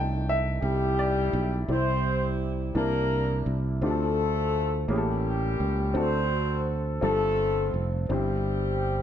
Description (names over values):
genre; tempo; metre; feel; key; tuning
slow gospel; 56 BPM (dotted quarters); 6/8; straight; C major; A4 = 440 Hz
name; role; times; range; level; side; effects
warm upright piano; accompaniment; 0.0-9.0 s; G2 to A5; -31 LUFS; left 1 dB; none
fingered electric bass; bass; 0.0-9.0 s; F1 to D2; -28 LUFS; right 1 dB; none
mellow horn section; melody; 0.6-9.0 s; G3 to C5; -28 LUFS; left 2 dB; none
room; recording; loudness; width
light reverb; none; -24 LUFS; side -9 dB against mid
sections
0.0-1.7 A section; 1.7-9.0 B section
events
upright piano solo 0.0-1.7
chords
0.0 C6; 1.7 C; 2.8 C13; 3.8 Dm7; 4.9 A7b9; 6.0 D7; 7.0 G9sus4; 8.1 C/G